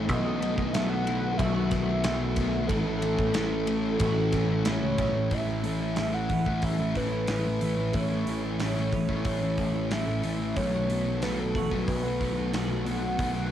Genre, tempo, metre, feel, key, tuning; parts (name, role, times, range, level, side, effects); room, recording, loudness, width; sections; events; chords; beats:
rock, shoegaze and dream pop; 92 BPM; 4/4; straight; A lydian; A4 = 440 Hz
twelve-string electric guitar; arpeggios; 0.0-13.5 s; E3 to A4; -38 LUFS; left 1 dB
overdriven semi-hollow guitar; riff; 0.0-13.5 s; A2 to F#4; -32 LUFS; right 9 dB; reverse reverb, cassette tape
thick fuzz guitar; riff; 0.0-13.5 s; A2 to B3; -30 LUFS; left 7 dB; distortion, analog chorus, cassette tape
picked electric bass; bass; 0.0-13.5 s; A1 to C#2; -33 LUFS; equal
mellow horn-like synth lead; melody; 0.1-13.5 s; A4 to F#5; -32 LUFS; right 1 dB; chorus, cassette tape, analog delay
gated 80s drum kit; drums; 0.1-13.3 s; hi-hat, kick drum, ride cymbal, snare drum; -33 LUFS; right 1 dB; cassette tape
light reverb; home recording on cassette; -25 LUFS; side -10 dB against mid
0.0-5.3 A section; 5.3-13.5 B section
0.1 B7sus4; 2.7 A6; 5.3 A; 10.6 B5
| 0.08 0.73 1.39 2.04 | 2.70 3.35 4.00 4.66 | 5.32 5.97 6.63 7.29 | 7.94 8.60 9.26 9.91 | 10.57 11.22 11.88 12.54 | 13.19